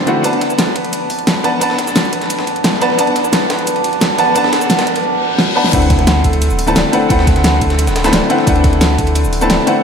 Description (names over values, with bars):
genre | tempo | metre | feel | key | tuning
liquid drum and bass | 175 BPM | 4/4 | straight | unclear | A4 = 439 Hz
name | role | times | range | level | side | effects
bright grand piano | accompaniment | 0.0-9.8 s | D3 to A5 | -15 LUFS | equal | ping-pong delay
felt-muted upright piano | arpeggios | 0.0-9.8 s | D4 to A5 | -21 LUFS | equal | ping-pong delay
pop drum kit | drums | 0.1-9.7 s | crash cymbal, hi-hat, rim click, shaker, snare drum | -18 LUFS | equal | overdrive
breakbeat sampler-style drum kit | drums | 0.2-9.8 s | hi-hat, ride cymbal, snare drum | -22 LUFS | equal | high-pass filter on cymbals, high-pass filter on snare, high-pass filter on hats, high-pass filter on room
electronic kick drum | drums | 0.2-9.1 s | none | -17 LUFS | equal | overdrive, high-pass filter on kick, high-pass filter on room
riser, reverse cymbal and impact | sound effects | 2.8-7.1 s | none | -25 LUFS | equal | none
sub bass with octave | bass | 5.7-9.6 s | D1 to D2 | -15 LUFS | equal | tube saturation
room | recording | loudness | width
wet church reverb, RT60 3.2 s | dreamy mix soaked in reverb | -11 LUFS | side -6 dB against mid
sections
0.0-5.7 A section; 5.7-9.8 B section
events
build-up 0.0-5.7; reverse cymbal 5.0-5.7; drum fill 5.4-5.7; drop 5.7-9.8; impact 5.7-7.1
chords
0.2 Bm7; 5.7 D13